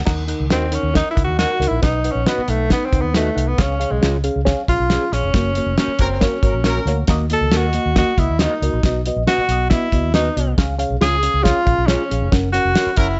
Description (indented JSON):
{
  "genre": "uptempo 1960s-style soul",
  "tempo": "137 BPM",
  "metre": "4/4",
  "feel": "straight",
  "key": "unclear",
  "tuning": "A4 = 439 Hz",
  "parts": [
    { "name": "vintage muted fingered electric bass", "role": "bass", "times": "0.0-13.2 s", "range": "E#1 to D#2", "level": "-24 LUFS", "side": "equal", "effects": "none" },
    { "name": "reed electric piano", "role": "accompaniment", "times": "0.1-13.1 s", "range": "B2 to F#5", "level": "-27 LUFS", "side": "equal", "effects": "phaser" },
    { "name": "cloth-damped thuddy drum kit", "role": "drums", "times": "0.1-13.1 s", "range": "crash cymbal, hi-hat, kick drum, snare drum", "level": "-21 LUFS", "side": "equal", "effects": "none" },
    { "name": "breathy tenor saxophone", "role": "melody", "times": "0.5-13.2 s", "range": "G#3 to A4", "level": "-23 LUFS", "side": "equal", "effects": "slapback echo" },
    { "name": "mellow electric guitar", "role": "stabs", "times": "0.5-12.9 s", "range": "E#4 to D#5", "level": "-29 LUFS", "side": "equal", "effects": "analog chorus" },
    { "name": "warm horn section", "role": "second line", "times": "6.0-7.0, 13.0-13.1 s", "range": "F#3 to A#4", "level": "-28 LUFS", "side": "equal", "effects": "slapback echo" }
  ],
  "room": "light reverb, studio reverb",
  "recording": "nothing above 7.9 kHz",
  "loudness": "-18 LUFS",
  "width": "mono",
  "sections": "0.1-13.2 A section",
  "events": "tenor saxophone solo 0.1-13.2; band accent 5.3-7.1, 12.3-13.2",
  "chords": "0.1 D#m; 1.8 B; 3.6 C#; 5.3 F#; 7.1 D#m; 8.8 B; 10.6 C#; 12.3 F#",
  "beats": "| 0.08 0.52 0.95 1.39 | 1.83 2.27 2.71 3.14 | 3.58 4.02 4.46 4.90 | 5.33 5.77 6.21 6.65 | 7.08 7.52 7.96 8.40 | 8.84 9.27 9.71 10.15 | 10.58 11.02 11.46 11.89 | 12.33 12.77"
}